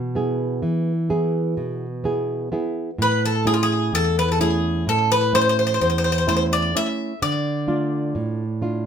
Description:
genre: greek folk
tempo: 128 BPM (eighths)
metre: 9/8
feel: straight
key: unclear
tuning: A4 = 440 Hz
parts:
  - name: nylon-string guitar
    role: accompaniment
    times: 0.0-8.9 s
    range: E2 to G#4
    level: -22 LUFS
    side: right 2 dB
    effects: none
  - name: Greek bouzouki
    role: melody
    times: 3.0-8.9 s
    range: F4 to E5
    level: -20 LUFS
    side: left 2 dB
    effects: slapback echo
room: moderate studio reverb, RT60 0.6 s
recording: none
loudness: -19 LUFS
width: side -8 dB against mid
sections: 0.0-8.9 A section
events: none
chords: 0.0 E; 3.0 A; 7.2 Dm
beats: 0.16 0.63 1.10 1.57 2.04 2.51 | 2.98 3.46 3.92 4.39 4.86 5.33 5.80 6.27 6.74 | 7.21 7.68 8.15 8.62

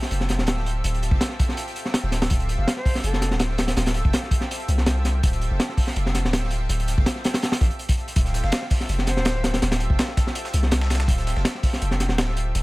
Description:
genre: drum and bass, jungle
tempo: 164 BPM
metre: 4/4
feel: straight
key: D minor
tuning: A4 = 440 Hz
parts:
  - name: lush unison pad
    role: sustained chords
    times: 0.0-12.6 s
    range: C4 to E5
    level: -32 LUFS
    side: equal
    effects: chorus
  - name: crunchy breakbeat drum kit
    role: drums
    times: 0.0-12.6 s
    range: hi-hat, kick drum, snare drum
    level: -22 LUFS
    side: equal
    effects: none
  - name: long sustained 808-style bass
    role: bass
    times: 0.1-12.6 s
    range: D1 to C2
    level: -23 LUFS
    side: equal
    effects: none
  - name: mellow silver concert flute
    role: melody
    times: 2.6-3.4, 8.4-9.6 s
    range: A4 to F5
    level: -34 LUFS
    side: left 1 dB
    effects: vintage 12-bit sampler grit, dub echo
  - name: dusty soul sampler-style drum kit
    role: drums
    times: 8.2-12.6 s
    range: hi-hat, snare drum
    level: -34 LUFS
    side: equal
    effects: high-pass filter on hats, high-pass filter on snare
room: small room reverb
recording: none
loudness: -20 LUFS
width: side -21 dB against mid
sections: 0.0-12.6 A section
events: none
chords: 0.0 Dm11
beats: 0.11 0.48 | 0.84 1.21 1.57 1.94 | 2.31 2.67 3.04 3.40 | 3.77 4.13 4.50 4.87 | 5.23 5.60 5.96 6.33 | 6.70 7.06 7.43 7.79 | 8.16 8.53 8.89 9.26 | 9.62 9.99 10.35 10.72 | 11.09 11.45 11.82 12.18 | 12.55

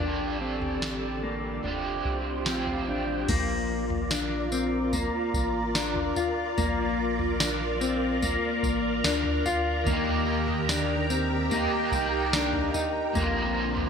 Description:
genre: dream pop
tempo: 73 BPM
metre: 4/4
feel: straight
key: Bb major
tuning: A4 = 440 Hz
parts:
  - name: overdriven semi-hollow guitar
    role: accompaniment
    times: 0.0-3.8, 9.8-13.9 s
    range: Bb2 to G4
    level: -32 LUFS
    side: right 6 dB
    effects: harmonic tremolo, analog chorus
  - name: soft string machine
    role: sustained chords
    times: 0.0-13.9 s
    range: F4 to Bb5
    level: -30 LUFS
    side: right 1 dB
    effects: phaser, ensemble chorus
  - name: mellow electric guitar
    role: arpeggios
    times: 0.0-13.9 s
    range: Bb3 to F4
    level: -29 LUFS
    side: left 4 dB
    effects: lush chorus, ping-pong delay
  - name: round analog bass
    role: bass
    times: 0.0-13.9 s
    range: F1 to Eb2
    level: -34 LUFS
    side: equal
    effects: none
  - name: soft vintage rhythm box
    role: drums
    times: 0.0-13.9 s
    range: crash cymbal, kick drum, snare drum, tambourine, toms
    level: -31 LUFS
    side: right 1 dB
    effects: gated reverb
room: moderate plate reverb, RT60 2.4 s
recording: bright 1980s-style digital production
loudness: -25 LUFS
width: side -6 dB against mid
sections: 0.0-3.3 A section; 3.3-13.9 B section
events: none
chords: 0.0 Dsus4/A; 1.6 Fsus2; 3.3 Bb; 9.9 Eb; 13.2 Bbadd9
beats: | 0.00 0.82 1.64 2.47 | 3.29 4.11 4.93 5.75 | 6.58 7.40 8.22 9.04 | 9.86 10.69 11.51 12.33 | 13.15

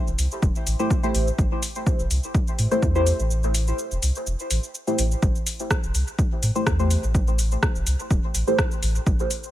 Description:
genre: dub techno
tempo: 125 BPM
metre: 4/4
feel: swing 54% on 16ths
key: A minor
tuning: A4 = 439 Hz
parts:
  - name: soft dub sub bass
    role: bass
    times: 0.1-9.1 s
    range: E1 to A2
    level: -23 LUFS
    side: equal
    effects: sidechain pumping
  - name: deep house drum kit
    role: drums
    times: 0.1-9.5 s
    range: cabasa, hi-hat, rim click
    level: -28 LUFS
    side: equal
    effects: overdrive
  - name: electronic kick drum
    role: drums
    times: 0.4-9.2 s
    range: none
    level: -23 LUFS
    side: equal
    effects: overdrive
  - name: deep mellow chord stab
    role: stabs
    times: 0.8-8.6 s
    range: A3 to C5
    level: -27 LUFS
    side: equal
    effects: chorus, phaser, vintage 12-bit sampler grit, sidechain pumping, dub echo
room: little or no reverb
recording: none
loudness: -20 LUFS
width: side -13 dB against mid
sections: 0.0-5.2 A section; 5.2-9.5 A section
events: break 3.3-5.2; filter sweep on synth stab 5.2-9.5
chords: 0.0 Am7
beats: 0.43 0.91 | 1.39 1.87 2.35 2.83 | 3.31 3.79 4.27 4.75 | 5.23 5.71 6.19 6.67 | 7.15 7.63 8.11 8.59 | 9.07

